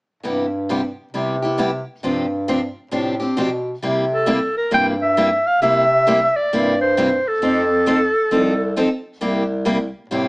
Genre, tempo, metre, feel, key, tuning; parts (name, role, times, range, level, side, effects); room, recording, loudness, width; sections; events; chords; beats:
acoustic string swing (jazz manouche); 134 BPM; 4/4; swing 63% on 8ths; C major, C mixolydian from 3.8 s; A4 = 440 Hz
picked steel-string acoustic guitar; accompaniment; 0.2-10.3 s; C3 to A4; -20 LUFS; equal
breathy bass clarinet; bass; 0.2-10.3 s; C2 to C3; -22 LUFS; equal
breathy clarinet; melody; 4.1-9.1 s; A4 to G5; -17 LUFS; equal
light reverb; small speaker sound; -16 LUFS; side -29 dB against mid
0.2-3.8 A section; 3.8-10.3 B section
0.2 Cmaj7/G; 2.0 G7sus4; 3.8 C7; 7.4 F7; 9.2 C7
| 0.23 0.67 1.12 1.57 | 2.02 2.47 2.92 3.37 | 3.82 4.27 4.71 5.16 | 5.61 6.06 6.51 6.96 | 7.41 7.86 8.31 8.76 | 9.21 9.65 10.10